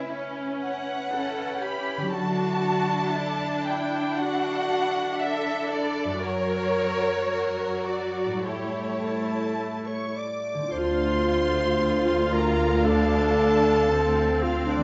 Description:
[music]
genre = cinematic, emotional film score for orchestra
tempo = 52-60 BPM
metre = 4/4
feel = rubato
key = D minor from 10.7 s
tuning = A4 = 440 Hz
[part]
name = dark symphonic violin section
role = melody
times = 0.0-14.8 s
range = C#5 to B5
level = -33 LUFS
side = equal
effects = none
[part]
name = clear symphonic violin section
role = second line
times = 0.0-14.8 s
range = E4 to D6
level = -37 LUFS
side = equal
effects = none
[part]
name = concert harp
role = arpeggios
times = 0.0-14.8 s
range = F#2 to A#4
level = -37 LUFS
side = equal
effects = none
[part]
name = rich studio cello section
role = bass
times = 0.0-14.8 s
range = D2 to A#4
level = -32 LUFS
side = equal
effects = none
[part]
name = clear symphonic viola section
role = accompaniment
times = 0.1-14.8 s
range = F#3 to F4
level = -32 LUFS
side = equal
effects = none
[part]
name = clear clarinet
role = second line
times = 9.0-14.8 s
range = D4 to D5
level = -28 LUFS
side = equal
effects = none
[part]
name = rich studio double bass section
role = bass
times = 10.7-14.8 s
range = D2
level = -31 LUFS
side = equal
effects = none
[sound]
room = wet recital hall reverb, RT60 1.6 s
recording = nothing above 7.7 kHz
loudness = -25 LUFS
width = mono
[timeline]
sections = 0.0-10.7 A section; 10.7-14.8 A section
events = none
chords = 0.0 Aadd9/C#; 2.2 Dadd9; 6.2 F#; 8.4 A7; 10.7 Dm7

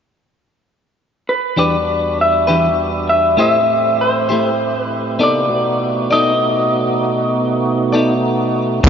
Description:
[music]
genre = slow blues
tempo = 66 BPM (dotted quarters)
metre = 12/8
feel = straight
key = unclear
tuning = A4 = 444 Hz
[part]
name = electric guitar through a small old amp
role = melody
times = 1.3-6.8 s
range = B4 to E5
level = -25 LUFS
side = left 1 dB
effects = none
[part]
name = clean electric guitar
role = accompaniment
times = 1.6-8.9 s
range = none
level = barely audible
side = none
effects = none
[part]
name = tonewheel organ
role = sustained chords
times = 1.6-8.9 s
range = E2 to G4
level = -28 LUFS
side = right 1 dB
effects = none
[part]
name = plucky analog bass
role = bass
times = 8.8-8.9 s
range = E2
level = -10 LUFS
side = equal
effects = none
[part]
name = warm soul drum kit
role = drums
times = 8.8-8.9 s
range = crash cymbal, kick drum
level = -10 LUFS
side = equal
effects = none
[sound]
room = light reverb, studio ambience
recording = nothing above 7.5 kHz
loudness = -13 LUFS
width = side -7 dB against mid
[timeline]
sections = 0.0-1.6 A section; 1.6-8.8 B section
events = none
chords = 0.0 N.C.; 1.6 Em7; 3.4 Am7; 5.2 B7#9

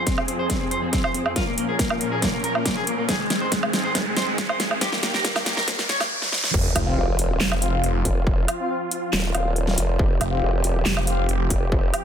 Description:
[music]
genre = heavy wobble dubstep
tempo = 139 BPM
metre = 4/4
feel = half-time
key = F minor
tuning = A4 = 440 Hz
[part]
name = electric guitar at the edge of break-up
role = melody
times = 0.0-6.1 s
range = Ab3 to Db5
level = -26 LUFS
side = left 2 dB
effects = ping-pong delay
[part]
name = supersaw chords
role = sustained chords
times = 0.0-12.0 s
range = Eb2 to Bb4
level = -30 LUFS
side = right 1 dB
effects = sidechain pumping, low-pass filter
[part]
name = riser and sub drop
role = sound effects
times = 1.5-8.3 s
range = none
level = -31 LUFS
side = right 1 dB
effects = none
[part]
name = dubstep drum kit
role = drums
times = 0.1-12.0 s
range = crash cymbal, handclaps, hi-hat, snare drum, woodblock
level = -25 LUFS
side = right 1 dB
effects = small room reverb
[part]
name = electronic kick drum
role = drums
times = 0.1-11.8 s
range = none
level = -25 LUFS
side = equal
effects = distortion, small room reverb
[part]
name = formant-sweep wobble bass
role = bass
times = 6.5-11.9 s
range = Eb1 to F1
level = -23 LUFS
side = equal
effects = chorus, overdrive
[part]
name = snarling distorted saw bass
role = bass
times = 6.8-11.5 s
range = F1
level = -23 LUFS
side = equal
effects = overdrive
[part]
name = mellow brass ensemble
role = stabs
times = 6.9-11.3 s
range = C4 to F5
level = -29 LUFS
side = left 3 dB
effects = ping-pong delay
[sound]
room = light reverb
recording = dense, heavily limited modern master, high-pass filter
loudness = -20 LUFS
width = side -8 dB against mid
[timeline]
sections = 0.0-6.5 A section; 6.5-12.0 B section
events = build-up 0.0-6.5; drum fill 0.0-6.1, 6.2-6.5; filter sweep on supersaw synth 0.0-6.5; filter sweep 0.0-6.5; riser 1.5-6.5; drop 6.5-12.0; impact 6.5-8.3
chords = 0.0 Fm; 1.4 Bbm; 3.1 Ab; 4.8 Eb; 6.5 F5

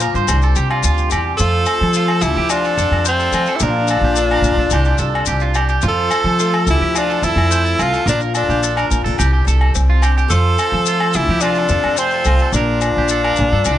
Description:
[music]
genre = highlife guitar band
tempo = 108 BPM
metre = 4/4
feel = straight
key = unclear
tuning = A4 = 440 Hz
[part]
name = picked old ladder-braced acoustic guitar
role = accompaniment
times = 0.0-13.8 s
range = F2 to A4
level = -25 LUFS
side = left 8 dB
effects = none
[part]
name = mellow tonewheel organ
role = sustained chords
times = 0.0-1.4 s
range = F5 to D6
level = -32 LUFS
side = left 1 dB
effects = none
[part]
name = electric guitar at the edge of break-up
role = arpeggios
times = 0.0-13.8 s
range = D4 to C5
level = -22 LUFS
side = right 7 dB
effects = lush chorus, analog delay
[part]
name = upright bass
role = bass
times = 0.0-13.8 s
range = Bb1 to F3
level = -17 LUFS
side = equal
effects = none
[part]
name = maracas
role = percussion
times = 0.0-13.8 s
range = none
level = -25 LUFS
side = left 15 dB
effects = none
[part]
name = agogo bells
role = percussion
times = 0.3-13.8 s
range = none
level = -24 LUFS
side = left 4 dB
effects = none
[part]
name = edgy tenor saxophone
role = melody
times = 1.4-13.8 s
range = C4 to A4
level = -18 LUFS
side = left 1 dB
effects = analog delay
[part]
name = clear trumpet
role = second line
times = 1.4-13.8 s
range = F4 to C5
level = -28 LUFS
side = right 8 dB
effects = none
[sound]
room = light reverb, small room ambience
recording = nothing above 10.9 kHz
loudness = -13 LUFS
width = side -12 dB against mid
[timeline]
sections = 0.0-1.4 A section; 1.4-13.8 B section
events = none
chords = 0.3 Csus2; 1.4 F; 3.6 Bb; 4.7 Csus2; 8.1 Bb; 9.2 C5; 12.5 Bb

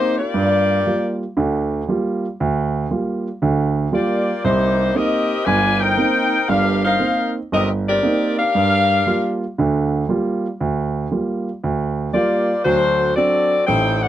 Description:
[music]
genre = jazz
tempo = 117 BPM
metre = 4/4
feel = swing 69% on 8ths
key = G minor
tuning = A4 = 439 Hz
[part]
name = warm saxophone section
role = melody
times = 0.0-14.1 s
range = A3 to Ab5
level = -17 LUFS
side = left 2 dB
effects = none
[part]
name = warm grand piano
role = accompaniment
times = 0.0-14.1 s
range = G1 to F4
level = -19 LUFS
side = right 3 dB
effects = none
[sound]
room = little or no reverb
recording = dry, close 1970s-style studio recording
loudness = -16 LUFS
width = side -12 dB against mid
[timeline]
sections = 0.0-14.1 A section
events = none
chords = 0.3 Gm7; 4.4 Cm7; 8.5 Gm7; 12.6 D7

